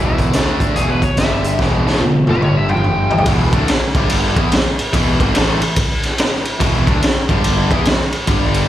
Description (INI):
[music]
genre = blues rock power trio and southern rock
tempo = 144 BPM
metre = 4/4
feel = swing 64% on 8ths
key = unclear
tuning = A4 = 441 Hz
[part]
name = overdriven slide guitar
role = melody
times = 0.0-3.3 s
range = E4 to G5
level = -21 LUFS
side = left 2 dB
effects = slapback echo
[part]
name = distorted electric guitar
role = riff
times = 0.0-8.7 s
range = E2 to E4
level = -19 LUFS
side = equal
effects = overdrive, slapback echo
[part]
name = fuzz picked electric bass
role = bass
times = 0.0-8.7 s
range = E1 to E2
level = -19 LUFS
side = equal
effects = overdrive
[part]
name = raw garage drum kit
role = drums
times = 0.2-8.6 s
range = hi-hat, kick drum, ride cymbal, snare drum, toms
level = -16 LUFS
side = equal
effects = none
[sound]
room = light reverb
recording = live gig heard through the venue's PA, recital hall reverb, faint mains hum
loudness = -13 LUFS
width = side -12 dB against mid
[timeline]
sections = 0.0-3.3 A section; 3.3-8.7 B section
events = drum fill 1.6-3.3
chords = 0.3 D5; 0.8 E5; 1.2 G5; 1.6 E5; 2.2 G5; 3.3 E5; 3.9 G5; 4.3 E5; 7.2 G5; 7.6 E5; 8.3 G5